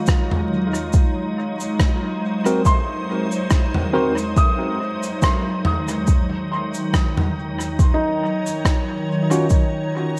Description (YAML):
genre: ambient dub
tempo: 70 BPM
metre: 4/4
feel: swing 56% on 16ths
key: unclear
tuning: A4 = 445 Hz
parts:
  - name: soft additive organ-like pad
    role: sustained chords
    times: 0.0-10.2 s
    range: Eb3 to Db5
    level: -26 LUFS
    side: equal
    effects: ensemble chorus, built-in reverb
  - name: felt-muted upright piano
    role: arpeggios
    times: 0.0-10.2 s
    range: Eb4 to Eb6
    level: -29 LUFS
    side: equal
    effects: tape echo
  - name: big rock drum kit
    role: drums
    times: 0.1-10.2 s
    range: cabasa, rim click, toms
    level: -29 LUFS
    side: equal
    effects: dub echo
  - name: electronic kick drum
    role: drums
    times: 0.1-9.7 s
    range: none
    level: -19 LUFS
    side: equal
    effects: none
  - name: tine electric piano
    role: stabs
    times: 2.5-4.1, 9.3-9.5 s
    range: C4 to Bb4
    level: -26 LUFS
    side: equal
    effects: dub echo
room: light reverb, studio reverb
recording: echo-heavy mix, vinyl crackle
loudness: -20 LUFS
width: mono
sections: 0.0-10.2 A section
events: none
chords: 0.0 Ab7; 6.1 Ebm7